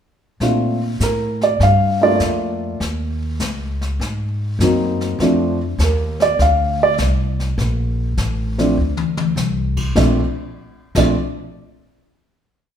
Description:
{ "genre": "jazz piano trio", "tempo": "101 BPM", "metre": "4/4", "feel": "swing 68% on 8ths", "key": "Bb major", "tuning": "A4 = 440 Hz", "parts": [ { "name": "dark baby grand piano", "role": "melody", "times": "0.4-11.1 s", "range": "F3 to F5", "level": "-17 LUFS", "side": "right 1 dB", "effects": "none" }, { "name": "upright bass", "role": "bass", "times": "0.4-11.1 s", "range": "A1 to Bb2", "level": "-20 LUFS", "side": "equal", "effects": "none" }, { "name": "jazz brush drum kit", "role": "drums", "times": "0.4-11.0 s", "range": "brushed snare drum, crash cymbal, hi-hat, kick drum, snare drum, toms", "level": "-26 LUFS", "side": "left 4 dB", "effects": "none" } ], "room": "moderate large studio reverb, RT60 1.2 s", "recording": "band playing live in one room", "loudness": "-16 LUFS", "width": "side -9 dB against mid", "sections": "0.4-10.0 A section; 10.0-12.3 final chord", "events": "drum fill 8.8-9.4", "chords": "0.4 Bbmaj9; 1.6 Gm9; 2.8 Dbsus2; 4.0 Ab9; 5.2 Bbmaj9; 10.0 Bb", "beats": "| 0.41 1.01 1.61 2.21 | 2.81 3.40 4.00 4.60 | 5.20 5.80 6.39 6.99 | 7.58 8.18 8.77 9.37 | 9.96 10.55" }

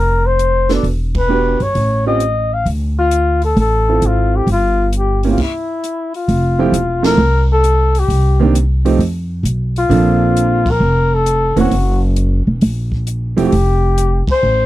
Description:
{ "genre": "jazz, small-group swing and bop", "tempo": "133 BPM", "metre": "4/4", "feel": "swing 67% on 8ths", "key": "unclear", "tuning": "A4 = 439 Hz", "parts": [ { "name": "mellow flugelhorn", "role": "melody", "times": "0.0-14.7 s", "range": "E4 to E#5", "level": "-16 LUFS", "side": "left 3 dB", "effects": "none" }, { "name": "upright bass", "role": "bass", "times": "0.0-14.7 s", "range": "E1 to F2", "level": "-15 LUFS", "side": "equal", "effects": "none" }, { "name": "compact cocktail drum kit", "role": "drums", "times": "0.4-14.3 s", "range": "crash cymbal, hi-hat, kick drum, ride cymbal, snare drum", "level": "-26 LUFS", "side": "equal", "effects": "none" }, { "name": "clear upright piano", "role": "accompaniment", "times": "0.7-13.5 s", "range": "C3 to A4", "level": "-16 LUFS", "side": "right 6 dB", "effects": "none" } ], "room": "little or no reverb", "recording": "dry, close 1970s-style studio recording", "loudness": "-12 LUFS", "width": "side -15 dB against mid", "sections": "0.0-6.3 A section; 6.3-14.7 B section", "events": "band accent 1.1, 7.0, 10.6, 14.2; stop 5.4-6.3", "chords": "0.0 Bbadd9; 0.8 Em7; 1.8 A7alt; 2.7 Dm9; 4.5 Gm7; 5.4 N.C.; 6.3 Fmaj7; 8.1 Cm7; 9.0 N.C.; 9.9 Bbmaj7; 11.7 F#7; 13.5 Fadd9", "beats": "0.39 | 0.85 1.30 1.75 2.21 | 2.66 3.11 3.57 4.02 | 4.47 4.93 5.38 5.83 | 6.29 6.74 7.19 7.64 | 8.10 8.55 9.00 9.45 | 9.90 10.36 10.81 11.26 | 11.71 12.16 12.61 13.07 | 13.52 13.97 14.42" }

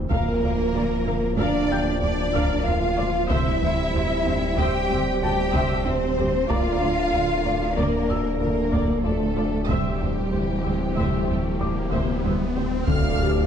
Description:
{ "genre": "cinematic, hybrid orchestral and electronic film score", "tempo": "94 BPM", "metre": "5/4", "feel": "straight", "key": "unclear", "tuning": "A4 = 440 Hz", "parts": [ { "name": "dark trombone section", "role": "sustained chords", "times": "0.0-13.5 s", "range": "D3 to D4", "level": "-30 LUFS", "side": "right 2 dB", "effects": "none" }, { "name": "snarling distorted saw bass", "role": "bass", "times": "0.0-13.5 s", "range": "D1", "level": "-29 LUFS", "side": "equal", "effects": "none" }, { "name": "felt-muted upright piano", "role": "texture", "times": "0.0-12.9 s", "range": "Bb4 to G6", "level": "-37 LUFS", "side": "left 2 dB", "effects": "digital delay" }, { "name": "warm symphonic violin section", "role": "melody", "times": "0.1-13.5 s", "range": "G4 to F6", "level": "-32 LUFS", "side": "left 3 dB", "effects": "none" }, { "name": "rich symphonic violin section", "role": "second line", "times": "0.1-13.5 s", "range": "G4 to G5", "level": "-30 LUFS", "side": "left 3 dB", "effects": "none" }, { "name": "warm symphonic viola section", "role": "accompaniment", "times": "0.1-13.5 s", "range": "E3 to F5", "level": "-33 LUFS", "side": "equal", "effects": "none" }, { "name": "tight sequenced synth", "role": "arpeggios", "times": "0.1-13.1 s", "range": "C3 to Bb4", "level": "-33 LUFS", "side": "left 1 dB", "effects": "none" }, { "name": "rich symphonic double bass section", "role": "bass", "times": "0.1-13.5 s", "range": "D2", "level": "-29 LUFS", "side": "right 2 dB", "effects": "none" }, { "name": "warm symphonic cello section", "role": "bass", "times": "0.1-13.5 s", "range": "D2 to G4", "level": "-28 LUFS", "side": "right 2 dB", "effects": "none" }, { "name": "taiko ensemble", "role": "drums", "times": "0.1-13.5 s", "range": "none", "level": "-28 LUFS", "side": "left 1 dB", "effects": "none" }, { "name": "riser and impact", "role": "sound effects", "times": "9.1-13.5 s", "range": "none", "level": "-32 LUFS", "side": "left 2 dB", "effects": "none" }, { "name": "mellow French horn section", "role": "sustained chords", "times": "12.9-13.5 s", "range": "G4 to A4", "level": "-26 LUFS", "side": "left 6 dB", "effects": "none" }, { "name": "clear tuba", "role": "bass", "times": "12.9-13.5 s", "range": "D2", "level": "-29 LUFS", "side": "right 4 dB", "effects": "none" } ], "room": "moderate scoring stage reverb, RT60 1.7 s", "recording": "dark, warm production", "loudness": "-20 LUFS", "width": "side -8 dB against mid", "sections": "0.0-12.9 A section", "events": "riser 9.1-12.9; impact 12.9-13.5", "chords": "0.1 Bb/D; 3.3 C/D; 6.5 Bb/D; 9.7 C/D; 12.9 Dmadd9", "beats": "| 0.11 0.75 1.39 2.03 2.67 | 3.31 3.94 4.58 5.22 5.86 | 6.50 7.13 7.77 8.41 9.05 | 9.69 10.33 10.96 11.60 12.24 | 12.88" }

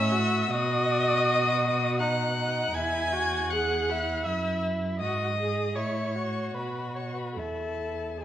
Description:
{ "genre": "classical, slow romantic movement for string quartet", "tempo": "73-82 BPM", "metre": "3/4", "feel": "rubato", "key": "unclear", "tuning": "A4 = 438 Hz", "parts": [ { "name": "rich violin", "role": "melody", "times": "0.0-8.2 s", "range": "G#5 to G#6", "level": "-32 LUFS", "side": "left 7 dB", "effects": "none" }, { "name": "rich violin", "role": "second line", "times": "0.0-8.2 s", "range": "C#4 to G#4", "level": "-31 LUFS", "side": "left 1 dB", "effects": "none" }, { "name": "rich viola", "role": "accompaniment", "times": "0.0-8.2 s", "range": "G#4 to G#5", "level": "-30 LUFS", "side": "right 2 dB", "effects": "none" }, { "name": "warm cello", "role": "bass", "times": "0.0-8.2 s", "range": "E2 to B2", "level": "-31 LUFS", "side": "right 2 dB", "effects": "none" } ], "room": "moderate recital hall reverb, RT60 1.6 s", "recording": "worn, warbling old tape, cassette tape, warbly pitch drift", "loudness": "-25 LUFS", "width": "side -11 dB against mid", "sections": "0.0-8.2 A section", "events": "none", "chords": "0.5 B; 2.7 E; 5.0 G#5; 5.7 A; 6.5 B5; 7.4 N.C.", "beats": "| 0.49 1.25 1.99 | 2.73 3.49 4.24 | 4.99 5.75 6.54 | 7.36 8.18" }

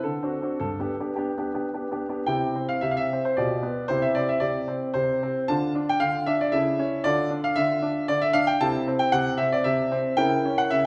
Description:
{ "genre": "classical-period piano sonatina", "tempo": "113 BPM", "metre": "3/4", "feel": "rubato", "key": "C major", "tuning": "A4 = 441 Hz", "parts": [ { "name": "clear concert grand piano", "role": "solo", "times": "0.0-10.9 s", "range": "G2 to A5", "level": "-25 LUFS", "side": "equal", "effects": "none" } ], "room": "wet recital hall reverb, RT60 1.3 s", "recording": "recorded in a church or concert hall", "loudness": "-25 LUFS", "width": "mono", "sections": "0.0-2.3 A section; 2.3-10.9 B section", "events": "none", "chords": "0.0 D7; 0.6 G; 2.3 C; 3.4 G7/B; 3.9 C; 5.5 Dm; 6.5 A/C#; 7.1 Dm; 8.6 Am/C; 10.2 C#dim7", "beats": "0.03 | 0.59 1.16 1.73 | 2.28 2.82 3.36 | 3.89 4.42 4.96 | 5.49 6.01 6.54 | 7.05 7.57 8.09 | 8.61 9.13 9.65 | 10.19 10.72" }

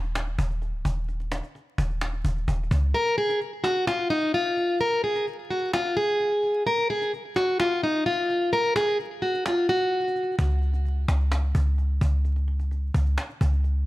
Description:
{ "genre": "hip hop, trap", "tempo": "129 BPM", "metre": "4/4", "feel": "half-time", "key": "Db major", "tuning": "A4 = 440 Hz", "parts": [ { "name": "clean 808-style bass", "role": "bass", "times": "0.0-2.9, 10.4-13.9 s", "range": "Db1 to Db2", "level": "-23 LUFS", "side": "equal", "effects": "none" }, { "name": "cajon", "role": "drums", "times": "0.0-13.7 s", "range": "none", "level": "-33 LUFS", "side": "equal", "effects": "none" }, { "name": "picked plugged-in steel-string acoustic guitar", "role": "melody", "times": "2.9-10.3 s", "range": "Eb4 to Bb4", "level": "-23 LUFS", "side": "equal", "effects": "low-pass filter, ping-pong delay" } ], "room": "light reverb, small room ambience", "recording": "vinyl crackle", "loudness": "-23 LUFS", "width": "side -18 dB against mid", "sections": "0.0-13.9 A section", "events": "break 0.0-2.9; kick muted 2.9-10.4", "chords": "none", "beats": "0.15 0.62 | 1.08 1.55 2.01 2.48 | 2.94 3.41 3.88 4.34 | 4.80 5.27 5.74 6.20 | 6.67 7.13 7.60 8.06 | 8.53 8.99 9.46 9.92 | 10.39 10.85 11.32 11.78 | 12.25 12.71 13.18 13.64" }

